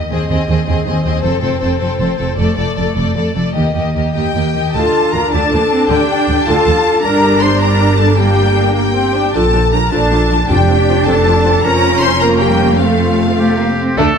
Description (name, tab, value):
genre	cinematic, heroic adventure film score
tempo	104 BPM (dotted quarters)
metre	6/8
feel	straight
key	unclear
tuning	A4 = 442 Hz
part	warm symphonic violin section	melody	0.0-14.2 s	A4 to C6	-20 LUFS	left 4 dB	none
part	warm symphonic violin section	second line	0.1-14.2 s	A3 to C6	-21 LUFS	left 4 dB	none
part	warm symphonic viola section	accompaniment	0.1-14.2 s	D3 to D4	-18 LUFS	left 1 dB	none
part	rich symphonic cello section	bass	0.1-14.1 s	D2 to F4	-19 LUFS	right 2 dB	none
part	rich symphonic double bass section	bass	0.1-14.1 s	F1 to Eb2	-17 LUFS	right 2 dB	none
part	mellow trumpet section	stabs	4.2-13.8 s	F4 to C5	-17 LUFS	equal	none
part	timpani	percussion	10.5-11.0 s	F2	-21 LUFS	equal	none
part	bright oboe	second line	13.4-14.2 s	G4 to A4	-19 LUFS	right 1 dB	none
room	moderate scoring stage reverb, RT60 1.9 s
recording	dark, warm production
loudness	-11 LUFS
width	side -6 dB against mid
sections	0.0-4.7 A section; 4.7-14.0 B section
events	build-up 0.0-4.7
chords	0.1 Ab/Eb; 1.2 F; 2.4 Dm/F; 3.6 Eb; 4.7 Dm; 7.0 Gm; 9.4 Bb; 10.5 F; 11.6 Bbm/F; 12.8 F